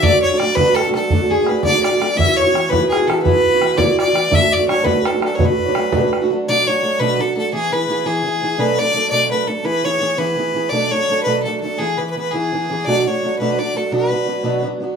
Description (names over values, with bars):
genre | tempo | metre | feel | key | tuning
celtic folk, Celtic jig | 112 BPM (dotted quarters) | 6/8 | straight | B dorian | A4 = 440 Hz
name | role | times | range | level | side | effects
clear fiddle | melody | 0.0-14.7 s | G#4 to E5 | -18 LUFS | left 1 dB | none
steel pan | second line | 0.0-6.3 s | G#4 to E5 | -22 LUFS | left 5 dB | none
fingerpicked steel-string acoustic guitar | accompaniment | 0.0-15.0 s | B2 to A4 | -19 LUFS | right 2 dB | none
bodhran | percussion | 0.0-6.2 s | none | -20 LUFS | right 1 dB | none
room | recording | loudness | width
wet studio reverb, RT60 0.5 s | band playing live in one room | -15 LUFS | side -6 dB against mid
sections
0.0-6.5 A section; 6.5-15.0 B section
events
none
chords
0.0 D; 2.2 Esus2; 4.3 D; 5.4 Bm7; 7.5 E; 8.6 Bm7; 9.7 E; 10.7 Bm7; 11.8 E; 12.9 Bm7; 13.9 Bm